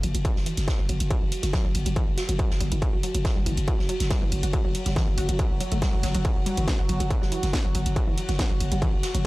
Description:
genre	driving peak-time techno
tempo	140 BPM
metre	4/4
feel	straight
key	unclear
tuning	A4 = 441 Hz
part	wide unison pluck	riff	0.0-9.2 s	E3 to F#4	-33 LUFS	equal	sidechain pumping, tape echo
part	growling 808-style bass	bass	0.0-9.2 s	F#1	-27 LUFS	equal	tube saturation, sidechain pumping, low-pass filter
part	analog drone	drone	0.4-9.3 s	F#3 to F#4	-34 LUFS	right 1 dB	chorus, sidechain pumping
part	soft-mallet drum kit	drums	0.0-9.1 s	ride cymbal, snare drum	-38 LUFS	left 2 dB	sidechain pumping on cymbals, high-pass filter on cymbals, studio reverb, high-pass filter on snare, high-pass filter on room
part	techno drum kit	drums	0.0-9.2 s	hi-hat, snare drum	-33 LUFS	right 1 dB	overdrive, sidechain pumping on hats, studio reverb
part	electronic kick drum	drums	0.2-8.9 s	none	-25 LUFS	equal	distortion, overdrive, studio reverb
room	light reverb, small room ambience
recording	transformer saturation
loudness	-22 LUFS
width	side -20 dB against mid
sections	0.0-9.3 A section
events	filter sweep on synth arpeggio sound 0.0-9.3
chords	0.0 F#5

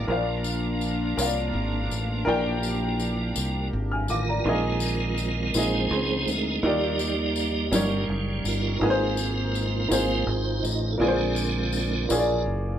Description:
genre	slow gospel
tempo	55 BPM (dotted quarters)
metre	6/8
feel	straight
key	unclear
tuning	A4 = 442 Hz
part	warm upright piano	accompaniment	0.0-12.8 s	Ab2 to F6	-27 LUFS	equal	none
part	chorused pulse-width pad	sustained chords	0.0-4.4 s	Bb3 to Bb4	-34 LUFS	left 2 dB	none
part	tonewheel organ	sustained chords	0.0-12.4 s	D3 to Eb5	-28 LUFS	right 3 dB	fast rotary speaker, overdrive, chorus vibrato
part	fingered electric bass	bass	0.0-12.8 s	Gb1 to Eb2	-28 LUFS	equal	none
part	tambourine	percussion	0.4-12.4 s	none	-34 LUFS	left 5 dB	none
room	moderate studio reverb, RT60 0.5 s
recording	band playing live in one room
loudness	-23 LUFS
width	side -10 dB against mid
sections	0.1-4.5 A section; 4.5-12.8 B section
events	tonewheel organ solo 0.1-4.5, 4.5-12.8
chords	0.1 Bb; 4.5 Bb7sus4; 6.6 Ebmaj9; 7.7 Eb7; 8.8 Ab69; 11.0 Bb9

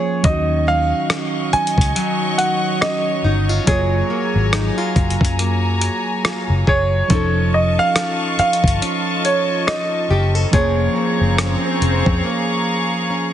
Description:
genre	contemporary R&B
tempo	70 BPM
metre	4/4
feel	swing 58% on 16ths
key	Eb minor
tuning	A4 = 440 Hz
part	warm baby grand piano	melody	0.0-13.1 s	Db5 to Ab5	-20 LUFS	right 2 dB	tape echo
part	muted felt-like synth keys	accompaniment	0.0-13.3 s	F3 to A4	-26 LUFS	right 1 dB	chorus, phaser
part	nylon-string guitar	arpeggios	0.0-13.3 s	Eb3 to A4	-24 LUFS	right 1 dB	tape echo
part	warm studio string section	sustained chords	0.2-13.3 s	Gb3 to Db6	-24 LUFS	left 1 dB	sidechain pumping
part	vintage muted fingered electric bass	bass	0.2-12.2 s	F1 to Gb2	-19 LUFS	left 1 dB	none
part	dusty soul sampler-style drum kit	drums	0.2-12.2 s	hi-hat, kick drum, rim click	-20 LUFS	left 1 dB	none
part	swell	sound effects	10.4-12.2 s	none	-28 LUFS	right 1 dB	none
room	light reverb, studio reverb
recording	heavily compressed radio sound, multiband compression, nothing above 10.4 kHz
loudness	-15 LUFS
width	side -11 dB against mid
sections	0.0-13.3 A section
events	swell 10.4-13.3; break 12.2-13.3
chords	0.2 Ebm9; 3.7 Gbmaj9; 7.1 F7b13; 10.5 Bbm7/F

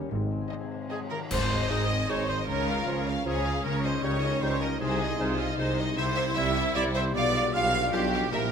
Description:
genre	cinematic, playful, whimsical film cue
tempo	154 BPM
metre	3/4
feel	straight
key	Ab major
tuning	A4 = 440 Hz
part	warm French horn section	sustained chords	0.0-8.5 s	F3 to F4	-38 LUFS	left 4 dB	none
part	concert harp	arpeggios	0.0-8.5 s	Ab2 to Bb5	-36 LUFS	left 10 dB	none
part	mellow tuba	bass	0.0-8.5 s	Ab1 to Db2	-35 LUFS	right 4 dB	none
part	rich studio cello section	bass	0.0-8.5 s	Ab2 to Db3	-34 LUFS	right 1 dB	none
part	rich studio double bass section	bass	0.0-8.5 s	Ab1 to Db2	-34 LUFS	right 2 dB	none
part	clear studio violin section	melody	0.5-8.4 s	C5 to F5	-34 LUFS	left 3 dB	none
part	rich studio violin section	second line	0.5-8.5 s	G4 to F5	-32 LUFS	right 1 dB	none
part	rich studio viola section	accompaniment	0.5-8.5 s	B3 to G4	-35 LUFS	right 1 dB	none
part	clear oboe	second line	0.9-8.5 s	G4 to F5	-36 LUFS	right 2 dB	none
part	concert flute	second line	0.9-8.5 s	G4 to F5	-36 LUFS	left 2 dB	none
part	clash cymbals and concert bass drum	percussion	1.3-2.1 s	none	-36 LUFS	equal	none
part	dark clarinet	second line	1.7-8.1 s	Eb4 to F4	-39 LUFS	right 3 dB	none
part	mellow bassoon	accompaniment	1.7-8.1 s	F3 to Ab3	-40 LUFS	right 2 dB	none
room	moderate scoring stage reverb, RT60 1.6 s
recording	none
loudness	-25 LUFS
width	side -7 dB against mid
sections	0.0-1.3 A section; 1.3-8.5 A section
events	band accent 1.3-1.7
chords	0.1 Ab; 2.5 Bbm/Db; 3.6 Eb7/Db; 4.8 Ab/C; 6.0 C; 7.1 G7/B

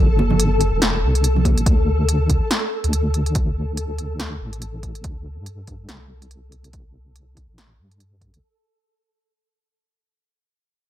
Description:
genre	deep dubstep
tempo	142 BPM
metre	4/4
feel	swing 58% on 16ths, half-time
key	unclear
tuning	A4 = 439 Hz
part	deep soft wobble bass	bass	0.0-8.4 s	E1 to G2	-21 LUFS	equal	chorus, tube saturation
part	flickering grainy texture	texture	0.0-8.4 s	A4	-26 LUFS	left 3 dB	built-in reverb
part	congas	percussion	0.2-1.5 s	none	-25 LUFS	right 3 dB	dub echo
part	deep house drum kit	drums	0.4-8.4 s	hi-hat, snare drum	-23 LUFS	equal	none
part	electronic kick drum	drums	1.5-8.3 s	none	-19 LUFS	equal	none
room	light reverb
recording	none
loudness	-17 LUFS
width	side -12 dB against mid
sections	0.0-8.4 A section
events	fade-out 0.0-8.4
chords	0.0 Am; 1.7 Dsus4

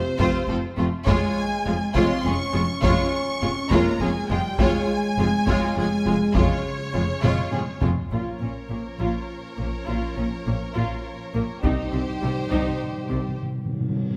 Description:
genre	cinematic, epic orchestral film score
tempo	102 BPM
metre	3/4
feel	straight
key	unclear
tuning	A4 = 436 Hz
part	clear symphonic violin section	melody	0.0-13.4 s	C5 to Db6	-34 LUFS	equal	none
part	dark French horn section	sustained chords	0.0-13.4 s	C3 to Eb4	-31 LUFS	equal	none
part	clear symphonic violin section	second line	0.2-13.4 s	Ab3 to Db5	-34 LUFS	equal	none
part	rich symphonic viola section	accompaniment	0.2-13.2 s	G3 to F4	-31 LUFS	equal	none
part	rich symphonic cello section	bass	0.2-13.2 s	F2 to C3	-31 LUFS	equal	none
part	rich symphonic double bass section	bass	0.2-13.2 s	F1 to C2	-30 LUFS	equal	none
part	taiko ensemble	drums	0.2-12.8 s	none	-28 LUFS	equal	none
part	timpani	percussion	11.6-14.2 s	C3	-31 LUFS	equal	none
part	reverse cymbal	sound effects	13.7-14.2 s	none	-57 LUFS	equal	none
room	wet recital hall reverb, RT60 1.7 s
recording	none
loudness	-24 LUFS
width	mono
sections	0.0-8.1 A section; 8.1-14.2 B section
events	drum fill 7.2-8.1; timpani fill 11.6-14.2; reverse cymbal 13.7-14.2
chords	0.0 F5; 1.1 Db/F; 8.1 Bbm; 11.6 Cm

